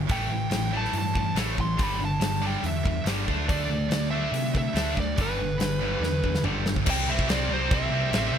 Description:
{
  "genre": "hard rock",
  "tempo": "142 BPM",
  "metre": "4/4",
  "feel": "straight",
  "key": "unclear",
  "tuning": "A4 = 440 Hz",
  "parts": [
    { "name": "heavy high-gain guitar", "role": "riff", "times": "0.0-8.4 s", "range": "G2 to D4", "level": "-31 LUFS", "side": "right 14 dB", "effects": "distortion" },
    { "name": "tight distorted guitar", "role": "riff", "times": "0.0-8.4 s", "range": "G2 to D4", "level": "-31 LUFS", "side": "left 12 dB", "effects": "distortion" },
    { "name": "overdriven picked electric bass", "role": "bass", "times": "0.0-8.4 s", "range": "G1 to C3", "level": "-29 LUFS", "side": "equal", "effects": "none" },
    { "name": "smooth overdriven lead guitar", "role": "melody", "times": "0.1-8.4 s", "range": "B4 to C6", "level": "-31 LUFS", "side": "right 2 dB", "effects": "none" },
    { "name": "huge arena drum kit", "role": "drums", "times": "0.1-8.2 s", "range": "crash cymbal, hi-hat, kick drum, snare drum, toms", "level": "-29 LUFS", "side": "equal", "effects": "none" }
  ],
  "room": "light reverb",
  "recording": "none",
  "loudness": "-23 LUFS",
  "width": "side -8 dB against mid",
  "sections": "0.0-6.9 A section; 6.9-8.4 B section",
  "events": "drum fill 6.0-6.9",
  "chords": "0.1 A5; 1.8 G5; 3.3 D5; 5.2 G; 6.9 C"
}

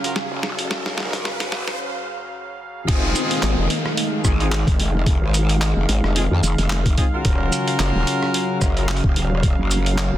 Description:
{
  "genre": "glitch hop",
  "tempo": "110 BPM",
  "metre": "4/4",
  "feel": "swing 56% on 16ths",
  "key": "F phrygian",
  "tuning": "A4 = 440 Hz",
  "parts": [
    { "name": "warm analog pad", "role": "sustained chords", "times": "0.0-10.2 s", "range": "Db3 to F5", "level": "-26 LUFS", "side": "right 1 dB", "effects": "chorus, sidechain pumping" },
    { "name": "warm horn section", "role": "stabs", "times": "0.0-8.9 s", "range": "C4 to Bb4", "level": "-26 LUFS", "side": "left 2 dB", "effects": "sidechain pumping, ping-pong delay" },
    { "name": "boom bap sampler-style drum kit", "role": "drums", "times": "0.0-10.1 s", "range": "crash cymbal, handclaps, hi-hat, rim click, shaker, snare drum", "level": "-26 LUFS", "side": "equal", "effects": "soft clipping on snare" },
    { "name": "riser and downlifter", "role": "sound effects", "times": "0.0-7.2 s", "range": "none", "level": "-29 LUFS", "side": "equal", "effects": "none" },
    { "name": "warbly tape-like pad", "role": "texture", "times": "0.0-1.8 s", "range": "Gb3 to F5", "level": "-35 LUFS", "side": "right 4 dB", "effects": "chorus, built-in reverb, sidechain pumping" },
    { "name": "growl bass", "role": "bass", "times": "0.3-10.2 s", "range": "Eb1 to F2", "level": "-21 LUFS", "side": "equal", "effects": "chorus, tube saturation, high-pass filter" },
    { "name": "electronic kick drum", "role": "drums", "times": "2.9-9.6 s", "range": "none", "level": "-19 LUFS", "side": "equal", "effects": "none" }
  ],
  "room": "little or no reverb",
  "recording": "dense, heavily limited modern master, high-pass filter",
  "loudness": "-18 LUFS",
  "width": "side -13 dB against mid",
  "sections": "0.0-2.9 A section; 2.9-10.2 B section",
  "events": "build-up 0.0-2.9; drum fill 0.0-1.8; riser 0.0-1.8; filter sweep on horn section 0.0-2.9; filter sweep on analog synth pad 0.0-2.9; break 1.8-2.9; drop 2.9-10.2",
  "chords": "0.0 Ebm9; 2.9 Fm7; 7.2 Ebm9"
}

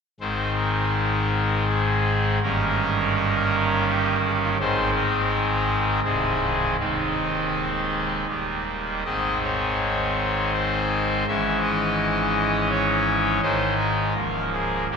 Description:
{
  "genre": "classical, chorale-style piece for pipe organ",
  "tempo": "82 BPM",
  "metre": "3/4",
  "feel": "rubato",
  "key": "Ab major",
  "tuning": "A4 = 440 Hz",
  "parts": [
    { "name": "pipe organ, trumpet", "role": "solo", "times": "0.2-15.0 s", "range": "C1 to Fb5", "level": "-20 LUFS", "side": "equal", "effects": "none" }
  ],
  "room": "wet cathedral reverb, RT60 4.6 s",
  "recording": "minimal, uncompressed stereo recording",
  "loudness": "-20 LUFS",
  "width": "side -6 dB against mid",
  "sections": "0.2-15.0 A section",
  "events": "none",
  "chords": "0.2 Ab; 2.4 Eb7/G; 4.6 Ab; 6.0 Ab/C; 6.8 Ab/Eb; 8.3 Eb; 9.1 Ab; 11.3 Dbm/Ab; 13.4 Ab; 14.2 Bbm/Db"
}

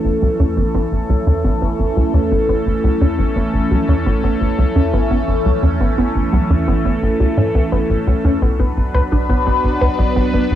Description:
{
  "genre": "ambient, sequencer-driven space music",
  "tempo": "86 BPM",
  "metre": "4/4",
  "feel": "straight",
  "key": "unclear",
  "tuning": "A4 = 445 Hz",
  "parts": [
    { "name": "phased analog pad", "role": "sustained chords", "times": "0.0-10.6 s", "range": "E3 to B4", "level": "-18 LUFS", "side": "equal", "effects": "phaser, chorus, cassette tape" },
    { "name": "tight sequencer bass", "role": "riff", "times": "0.0-10.6 s", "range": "A1 to A2", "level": "-17 LUFS", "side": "equal", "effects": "cassette tape, analog delay" },
    { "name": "wide unison pluck", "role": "arpeggios", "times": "0.2-10.4 s", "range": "F#3 to B4", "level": "-23 LUFS", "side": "right 1 dB", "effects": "auto-pan, cassette tape, analog delay" }
  ],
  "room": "wet small room reverb, RT60 0.5 s",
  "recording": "home recording on cassette",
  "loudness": "-14 LUFS",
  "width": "side -11 dB against mid",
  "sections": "0.0-10.6 A section",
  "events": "filter sweep on synth arpeggio sound 0.0-10.6",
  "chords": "0.0 A; 8.4 Bm"
}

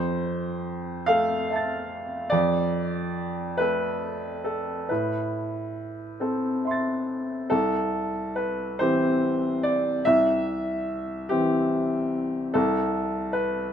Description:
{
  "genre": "neoclassical minimalist piano",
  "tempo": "45-50 BPM (dotted quarters)",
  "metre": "6/8",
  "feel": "rubato",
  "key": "C major",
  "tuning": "A4 = 439 Hz",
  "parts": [
    { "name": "clear upright piano", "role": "solo", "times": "0.0-13.7 s", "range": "C2 to A6", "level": "-24 LUFS", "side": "equal", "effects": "none" }
  ],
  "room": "light reverb",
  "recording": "minimal, uncompressed stereo recording, faint mains hum",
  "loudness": "-23 LUFS",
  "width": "side -8 dB against mid",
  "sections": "0.0-7.5 A section; 7.5-13.7 B section",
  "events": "none",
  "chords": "0.0 Fmaj7; 2.3 Dm/F; 4.9 Amadd9; 7.5 C; 12.5 Am/C"
}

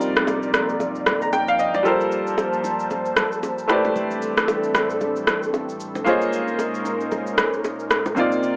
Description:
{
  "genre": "amapiano",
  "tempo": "114 BPM",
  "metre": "4/4",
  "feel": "swing 58% on 16ths",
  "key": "unclear",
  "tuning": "A4 = 439 Hz",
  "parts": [
    { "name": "clear grand piano", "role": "accompaniment", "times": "0.0-8.6 s", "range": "C3 to Bb5", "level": "-25 LUFS", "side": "equal", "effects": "none" },
    { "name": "airy breathy pad", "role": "sustained chords", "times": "0.0-8.6 s", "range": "C2 to A5", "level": "-30 LUFS", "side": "equal", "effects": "chorus" },
    { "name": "electronic shaker and rim click", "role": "drums", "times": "0.0-8.6 s", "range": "none", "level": "-23 LUFS", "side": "equal", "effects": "none" },
    { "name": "bongos and congas", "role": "percussion", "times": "0.3-8.3 s", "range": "none", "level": "-31 LUFS", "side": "equal", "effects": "none" }
  ],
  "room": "light reverb, small room ambience",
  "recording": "dry, gritty hardware recording, AM radio sound",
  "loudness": "-22 LUFS",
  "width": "mono",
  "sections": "0.0-8.6 A section",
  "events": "none",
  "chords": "0.0 Cm11; 1.9 Gm11; 3.7 Am11; 6.1 Bbm11"
}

